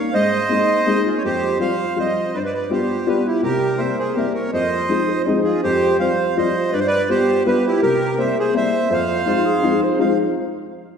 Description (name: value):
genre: musette waltz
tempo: 164 BPM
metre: 3/4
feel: straight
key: F minor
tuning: A4 = 440 Hz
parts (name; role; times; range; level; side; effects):
- accordion; melody; 0.0-10.2 s; E4 to F5; -19 LUFS; right 2 dB; tape echo
- clear upright piano; accompaniment; 0.1-10.2 s; F2 to F4; -20 LUFS; left 3 dB; none
- clear clarinet; second line; 4.9-5.6, 9.3-10.2 s; F4 to Eb5; -26 LUFS; right 1 dB; none
room: wet concert hall reverb, RT60 2.0 s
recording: heard from further back in the room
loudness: -16 LUFS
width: side -7 dB against mid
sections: 0.0-5.6 A section; 5.6-10.0 B section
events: none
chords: 0.1 Abadd9; 1.2 Fsus2; 2.3 G7; 3.4 C7; 4.5 Fm7; 5.6 Fsus2; 6.7 G7; 7.8 C7; 8.9 Fm7